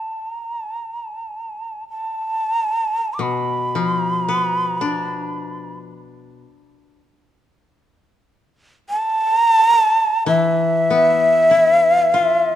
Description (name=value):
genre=japanese traditional, Japanese chamber music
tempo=free time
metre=none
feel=none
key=E in sen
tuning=A4 = 440 Hz
part: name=breathy shakuhachi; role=melody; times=0.0-12.6 s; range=E5 to D6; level=-17 LUFS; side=equal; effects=none
part: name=koto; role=accompaniment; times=3.2-12.6 s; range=B2 to F4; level=-23 LUFS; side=left 6 dB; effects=none
room=moderate scoring stage reverb, RT60 2.0 s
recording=dark, warm production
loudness=-15 LUFS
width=side -11 dB against mid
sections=0.0-12.6 A section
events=slowing down 7.2-12.6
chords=none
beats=free time